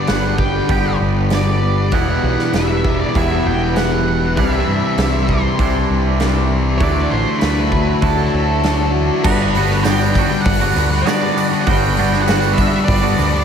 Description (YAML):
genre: rock, shoegaze and dream pop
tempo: 98 BPM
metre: 4/4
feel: straight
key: G major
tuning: A4 = 440 Hz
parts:
  - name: octave-fuzz lead guitar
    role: melody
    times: 0.0-13.4 s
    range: A4 to G5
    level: -23 LUFS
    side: equal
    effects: distortion, ping-pong delay
  - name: glassy FM pad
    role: sustained chords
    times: 0.0-13.4 s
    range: F#4 to C6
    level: -24 LUFS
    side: left 1 dB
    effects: ensemble chorus, built-in reverb
  - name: clean electric guitar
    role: arpeggios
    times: 0.0-9.2 s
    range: E3 to G4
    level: -29 LUFS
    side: right 7 dB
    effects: none
  - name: thick fuzz guitar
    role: riff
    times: 0.0-13.4 s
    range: E2 to D4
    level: -20 LUFS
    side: left 7 dB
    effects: distortion, ensemble chorus
  - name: twangy electric guitar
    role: riff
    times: 0.0-13.4 s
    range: E2 to G4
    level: -21 LUFS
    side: right 8 dB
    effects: reverse reverb
  - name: growling picked electric bass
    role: bass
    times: 0.1-13.4 s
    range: E1 to G2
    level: -20 LUFS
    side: equal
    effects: overdrive
  - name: huge arena drum kit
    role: drums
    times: 0.1-13.3 s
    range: crash cymbal, hi-hat, kick drum, snare drum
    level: -21 LUFS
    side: right 1 dB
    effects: none
  - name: tambourine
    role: percussion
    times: 9.3-13.4 s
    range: none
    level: -39 LUFS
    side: right 15 dB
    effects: none
room: moderate lush hall reverb, RT60 2.0 s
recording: dreamy mix soaked in reverb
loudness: -14 LUFS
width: side -7 dB against mid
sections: 0.0-9.2 A section; 9.2-13.4 A section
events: none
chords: 0.0 G; 1.9 Em; 4.4 Cadd9; 6.8 Dadd9; 9.2 Gmaj7